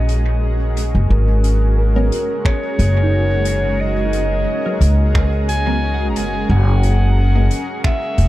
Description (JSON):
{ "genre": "ambient dub", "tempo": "89 BPM", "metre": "4/4", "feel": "swing 54% on 16ths", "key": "unclear", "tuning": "A4 = 443 Hz", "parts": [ { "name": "clear clarinet", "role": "melody", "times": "0.0-8.3 s", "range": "A#4 to A#5", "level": "-23 LUFS", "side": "equal", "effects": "tape echo" }, { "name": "granular cloud pad", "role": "sustained chords", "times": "0.0-8.3 s", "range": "G#3 to A#4", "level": "-25 LUFS", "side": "equal", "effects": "built-in reverb" }, { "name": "soft synth bell", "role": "arpeggios", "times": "0.0-8.3 s", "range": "D#4 to F#5", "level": "-32 LUFS", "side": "right 2 dB", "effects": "none" }, { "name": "upright bass", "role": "bass", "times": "0.0-8.3 s", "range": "E1 to C#2", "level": "-15 LUFS", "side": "equal", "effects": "none" }, { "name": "bubbling stepped-filter texture", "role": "texture", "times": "0.0-8.3 s", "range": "G#4", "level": "-31 LUFS", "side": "equal", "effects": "chorus, built-in reverb" }, { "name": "soft-mallet drum kit", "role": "drums", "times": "0.1-8.3 s", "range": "finger snaps, hi-hat", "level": "-29 LUFS", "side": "equal", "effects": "dub echo" }, { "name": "filtered dub chord stab", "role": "stabs", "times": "2.0-7.6 s", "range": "E3 to A#4", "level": "-27 LUFS", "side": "equal", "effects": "phaser, lush chorus, vintage 12-bit sampler grit, dub echo" }, { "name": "electronic kick drum", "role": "drums", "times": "2.5-8.0 s", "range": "none", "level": "-16 LUFS", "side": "equal", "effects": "overdrive" } ], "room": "small room ambience", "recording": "dark, warm production", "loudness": "-14 LUFS", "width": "side -16 dB against mid", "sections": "0.0-8.3 A section", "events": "none", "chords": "0.0 F#69; 1.1 G#9sus4; 6.5 F#9" }